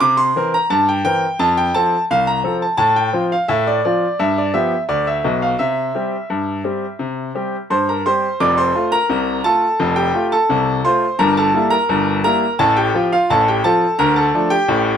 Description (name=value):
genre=ragtime piano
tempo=86 BPM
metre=2/4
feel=straight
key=F major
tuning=A4 = 440 Hz
part: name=bright grand piano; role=solo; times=0.0-15.0 s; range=F1 to D6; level=-14 LUFS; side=equal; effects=none
room=light reverb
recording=none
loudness=-14 LUFS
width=side -8 dB against mid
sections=0.0-8.4 A section; 8.4-15.0 B section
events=none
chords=0.0 C7; 1.4 F; 2.8 F/A; 4.2 G7; 5.6 C; 8.4 F; 11.2 Edim/G; 12.6 F/A; 14.0 Dm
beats=| 0.01 0.70 | 1.40 2.10 | 2.79 3.49 | 4.19 4.89 | 5.59 6.30 | 7.00 7.71 | 8.41 9.11 | 9.80 10.50 | 11.20 11.90 | 12.59 13.29 | 13.99 14.68